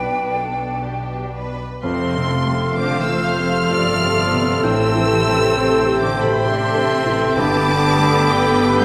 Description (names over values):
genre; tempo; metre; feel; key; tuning
cinematic, emotional film score for orchestra; 59-68 BPM; 3/4; rubato; unclear; A4 = 441 Hz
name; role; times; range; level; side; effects
warm studio violin section; melody; 0.0-8.8 s; D5 to G6; -27 LUFS; equal; none
bright silver concert flute; second line; 0.0-8.8 s; G5 to C6; -28 LUFS; equal; none
dark clarinet; second line; 0.0-8.8 s; A4 to B4; -26 LUFS; equal; none
rich studio violin section; second line; 0.0-8.8 s; G4 to A5; -30 LUFS; equal; none
felt-muted upright piano; accompaniment; 0.0-8.8 s; B1 to G4; -28 LUFS; equal; none
rich studio viola section; accompaniment; 0.0-8.8 s; A3 to C5; -28 LUFS; equal; none
concert harp; arpeggios; 0.0-8.8 s; F2 to A4; -30 LUFS; equal; none
dark studio double bass section; bass; 0.0-8.8 s; F1 to B1; -30 LUFS; equal; none
warm studio cello section; bass; 0.0-8.8 s; B2 to G3; -27 LUFS; equal; none
bright oboe; second line; 1.8-8.8 s; F5 to G5; -27 LUFS; equal; none
warm French horn section; sustained chords; 1.8-8.8 s; C3 to B3; -28 LUFS; equal; none
timpani; percussion; 7.4-8.8 s; G2; -32 LUFS; equal; none
room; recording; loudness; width
moderate scoring stage reverb, RT60 1.7 s; none; -18 LUFS; mono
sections
0.0-1.8 A section; 1.8-8.8 B section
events
none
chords
0.0 G/B; 1.8 F; 4.6 Am7; 7.4 Gadd9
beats
0.84 | 1.83 2.78 3.71 | 4.65 5.57 6.46 | 7.37 8.31